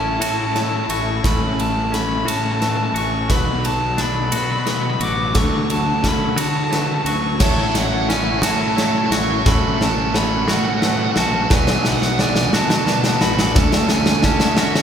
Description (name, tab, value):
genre	post-rock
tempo	58 BPM (dotted quarters)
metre	6/8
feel	straight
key	unclear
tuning	A4 = 440 Hz
part	nasal lead guitar with a parked wah	melody	0.0-14.8 s	E5 to D6	-23 LUFS	right 1 dB	overdrive
part	clear studio string section	sustained chords	0.0-14.8 s	C#3 to F#4	-31 LUFS	equal	none
part	felt-muted upright piano	arpeggios	0.0-14.8 s	A4 to E5	-32 LUFS	right 3 dB	none
part	twangy electric guitar	arpeggios	0.0-14.8 s	A2 to F#4	-28 LUFS	left 2 dB	none
part	fuzz guitar	riff	0.0-14.8 s	B2 to E4	-25 LUFS	left 5 dB	distortion
part	fuzz fingered electric bass	bass	0.0-14.8 s	A1 to D3	-23 LUFS	equal	overdrive
part	big rock drum kit	drums	0.2-14.8 s	crash cymbal, kick drum, ride cymbal, snare drum	-20 LUFS	equal	none
part	distorted electric guitar	riff	7.4-14.8 s	C#4 to C#5	-25 LUFS	right 6 dB	distortion
room	wet concert hall reverb, RT60 2.0 s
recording	recorded in a church or concert hall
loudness	-16 LUFS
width	side -8 dB against mid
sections	0.0-14.8 A section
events	build-up 0.0-14.8; drum fill 0.0-14.8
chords	0.0 A6; 1.2 F#m/A; 3.3 Bm; 5.3 Dmaj7; 7.4 A6; 9.5 F#m/A; 11.5 Bm; 13.6 Dmaj7